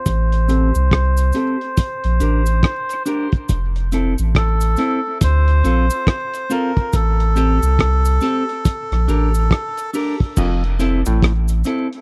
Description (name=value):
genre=dub reggae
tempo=70 BPM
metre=4/4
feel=swing 61% on 16ths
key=unclear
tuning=A4 = 440 Hz
part: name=melodica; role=melody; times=0.0-9.9 s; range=A4 to C5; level=-26 LUFS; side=equal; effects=low-pass filter, dub echo
part: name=warm sub bass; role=bass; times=0.1-11.6 s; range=F1 to D2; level=-18 LUFS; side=equal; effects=none
part: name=cloth-damped thuddy drum kit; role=drums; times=0.1-12.0 s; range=crash cymbal, hi-hat, kick drum, rim click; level=-19 LUFS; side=equal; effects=none
part: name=cabasa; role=percussion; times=0.1-11.9 s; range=none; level=-37 LUFS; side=equal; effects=none
part: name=clean electric guitar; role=accompaniment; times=0.5-11.9 s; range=C4 to Bb4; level=-26 LUFS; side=equal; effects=low-pass filter, dub echo
part: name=bright clav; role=riff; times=10.4-11.3 s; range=F2 to A2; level=-27 LUFS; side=equal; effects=dub echo
room=little or no reverb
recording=dry, close 1970s-style studio recording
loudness=-18 LUFS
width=mono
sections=0.0-10.4 A section; 10.4-12.0 B section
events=filter sweep 0.0-10.4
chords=0.1 Am7; 1.8 Bbmaj13/A; 3.5 Fmaj7; 5.2 Dm7; 6.9 Am7; 8.7 Gmadd9/A; 10.4 Fmaj7